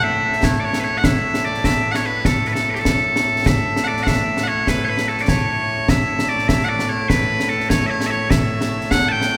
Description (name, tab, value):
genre	scottish traditional, Scottish pipe music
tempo	99 BPM (dotted quarters)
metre	6/8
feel	straight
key	A major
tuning	A4 = 440 Hz
part	loud bright bagpipes	melody	0.0-9.4 s	A2 to A5	-21 LUFS	equal	none
part	concert snare drum and concert bass drum	drums	0.3-9.3 s	none	-23 LUFS	equal	none
room	wet cathedral reverb, RT60 5.5 s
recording	recorded in a church or concert hall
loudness	-19 LUFS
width	mono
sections	0.0-3.5 A section; 3.5-9.4 A section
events	none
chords	none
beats	0.43 | 1.04 1.64 | 2.25 2.85 | 3.46 4.07 | 4.67 5.28 | 5.89 6.49 | 7.10 7.70 | 8.31 8.92